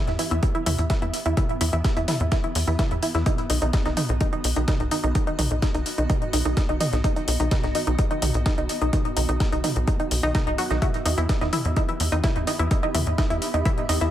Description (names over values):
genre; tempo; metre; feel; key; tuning
melodic techno; 127 BPM; 4/4; straight; E harmonic minor; A4 = 440 Hz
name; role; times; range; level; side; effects
granular cloud pad; texture; 0.1-14.1 s; B3 to B5; -34 LUFS; equal; built-in reverb, sidechain pumping
tight sequencer bass; bass; 0.1-14.1 s; B1 to E2; -24 LUFS; equal; sidechain pumping
breakbeat sampler-style drum kit; drums; 0.1-14.0 s; hi-hat, snare drum; -37 LUFS; equal; sidechain pumping on hats, high-pass filter on hats, high-pass filter on snare, tape echo
deep house drum kit; drums; 0.1-14.1 s; hi-hat, toms; -30 LUFS; equal; none
analog pluck; arpeggios; 0.2-14.1 s; D#4 to F#4; -26 LUFS; equal; chorus, sidechain pumping, tape echo
electronic kick drum; drums; 0.4-13.8 s; none; -24 LUFS; equal; overdrive
room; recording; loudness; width
light reverb, digital ambience; echo-heavy mix; -21 LUFS; side -12 dB against mid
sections
0.0-14.1 A section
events
fade-in on ambient pad 0.0-14.1; filter sweep on synth arpeggio sound 0.0-14.1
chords
0.0 Em; 3.3 B; 10.8 Em